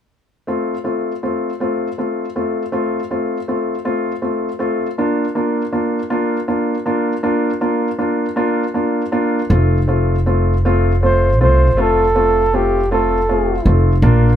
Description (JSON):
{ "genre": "pop", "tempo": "53 BPM (dotted quarters)", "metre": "6/8", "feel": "straight", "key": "F major", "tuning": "A4 = 441 Hz", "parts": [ { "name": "warm grand piano", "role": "accompaniment", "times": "0.5-14.3 s", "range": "A3 to F4", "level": "-18 LUFS", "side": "left 1 dB", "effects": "none" }, { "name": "upright bass", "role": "bass", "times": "9.5-14.4 s", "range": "F1 to C2", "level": "-14 LUFS", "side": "equal", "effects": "none" }, { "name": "breathy flugelhorn", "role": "melody", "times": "11.0-13.7 s", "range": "G4 to C5", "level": "-16 LUFS", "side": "right 2 dB", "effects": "none" } ], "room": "light reverb", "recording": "band playing live in one room", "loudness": "-15 LUFS", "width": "side -9 dB against mid", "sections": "0.5-9.5 A section; 9.5-14.4 B section", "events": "none", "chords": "0.5 F; 5.0 Bb; 9.5 F" }